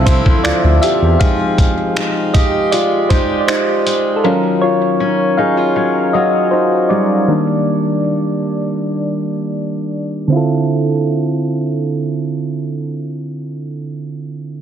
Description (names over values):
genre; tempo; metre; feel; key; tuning
contemporary R&B; 79 BPM; 4/4; straight; D phrygian; A4 = 440 Hz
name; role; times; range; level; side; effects
soft electric-piano-like synth keys; accompaniment; 0.0-14.6 s; D3 to F5; -15 LUFS; right 1 dB; chorus, low-pass filter
picked steel-string acoustic guitar; arpeggios; 0.0-7.7 s; D3 to G4; -21 LUFS; left 6 dB; low-pass filter, tape echo
smooth synth bass; bass; 0.0-1.2 s; C2 to E2; -13 LUFS; equal; none
downlifter; sound effects; 0.0-4.2 s; none; -32 LUFS; equal; none
dusty soul sampler-style drum kit; drums; 0.1-4.0 s; finger snaps, hi-hat, kick drum; -16 LUFS; equal; soft clipping on snare
room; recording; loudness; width
light reverb, digital ambience; dense, heavily limited modern master; -13 LUFS; side -9 dB against mid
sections
0.0-10.3 A section; 10.3-13.4 B section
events
synth keys solo 0.0-10.3; filter sweep 0.0-10.3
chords
0.0 Dm9; 1.2 Fm9; 4.2 Ebm9; 7.3 Ebmaj7; 10.3 Dm9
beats
0.44 | 1.20 1.96 2.72 3.48 | 4.24 5.00 5.76 6.52 | 7.28 8.04 8.80 9.56 | 10.32 11.08 11.84 12.60